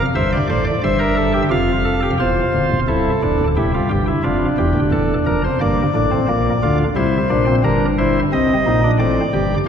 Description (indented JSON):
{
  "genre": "classical, baroque-style 3-part fugue for pipe organ",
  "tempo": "88 BPM",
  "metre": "4/4",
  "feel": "straight",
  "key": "unclear",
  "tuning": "A4 = 441 Hz",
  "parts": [
    { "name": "chamber organ, cornet", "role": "solo", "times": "0.0-9.7 s", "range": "C1 to F5", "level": "-15 LUFS", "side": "equal", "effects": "none" }
  ],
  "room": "wet church reverb, RT60 2.7 s",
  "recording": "heard from further back in the room",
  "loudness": "-15 LUFS",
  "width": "side -8 dB against mid",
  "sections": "0.0-2.9 A section; 2.9-9.7 B section",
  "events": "none",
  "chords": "0.2 C7/G; 1.5 Am7; 4.3 Dm; 5.6 Gm7; 7.0 C7; 8.3 Am7b5"
}